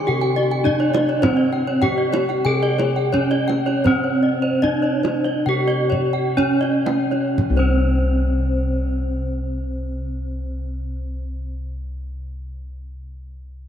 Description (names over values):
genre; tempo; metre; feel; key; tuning
Balinese gamelan; 57-104 BPM; 4/4; straight; C pelog; A4 = 440 Hz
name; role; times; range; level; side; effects
gamelan-type bronze metallophone; melody; 0.0-11.5 s; C4 to Ab4-40c; -21 LUFS; equal; none
gamelan-type bronze metallophone; arpeggios; 0.0-11.5 s; C5 to Ab5-40c; -28 LUFS; right 4 dB; none
gamelan-type bossed gongs; bass; 0.0-11.5 s; C2 to D4+50c; -23 LUFS; equal; none
gamelan-type bronze metallophone; arpeggios; 0.1-11.5 s; C5 to Ab5-40c; -27 LUFS; left 4 dB; none
kendang; percussion; 0.2-7.9 s; none; -28 LUFS; right 3 dB; none
room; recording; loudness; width
wet cathedral reverb, RT60 5.1 s; in a vast, echoing space; -18 LUFS; side -9 dB against mid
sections
0.0-7.4 A section; 7.4-11.6 B section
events
slowing down 1.2-7.4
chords
none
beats
0.08 0.66 | 1.23 1.83 2.46 3.13 | 3.85 4.62 5.46 6.37 | 7.37 8.42 9.47 10.52